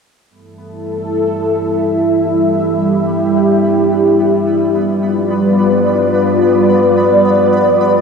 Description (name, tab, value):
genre	ambient, sequencer-driven space music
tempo	free time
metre	none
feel	none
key	unclear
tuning	A4 = 443 Hz
part	lush unison pad	sustained chords	0.3-8.0 s	G3 to E5	-11 LUFS	equal	chorus, phaser
part	pulsing gated texture	texture	0.3-8.0 s	B3 to B5	-25 LUFS	equal	chorus, built-in reverb
room	wet cathedral reverb, RT60 5.6 s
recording	in a vast, echoing space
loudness	-11 LUFS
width	side -5 dB against mid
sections	0.3-8.0 A section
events	fade-in on synth texture 0.3-8.0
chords	0.3 A5; 4.7 G7